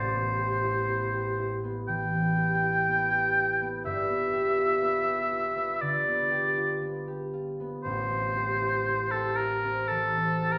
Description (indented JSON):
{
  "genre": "classical, impressionist duo for oboe and harp",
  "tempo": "57-63 BPM",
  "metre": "4/4",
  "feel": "rubato",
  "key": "unclear",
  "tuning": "A4 = 440 Hz",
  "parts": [
    { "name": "warm oboe", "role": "melody", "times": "0.0-10.6 s", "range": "A4 to G5", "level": "-29 LUFS", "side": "equal", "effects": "none" },
    { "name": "concert harp", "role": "accompaniment", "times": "0.0-10.6 s", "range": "G1 to G4", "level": "-32 LUFS", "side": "equal", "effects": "none" }
  ],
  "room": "wet recital hall reverb, RT60 1.5 s",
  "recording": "recorded in a church or concert hall",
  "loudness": "-28 LUFS",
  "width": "mono",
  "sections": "0.0-10.6 A section",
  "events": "none",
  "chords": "0.0 Am9; 3.8 G7; 7.8 Am7"
}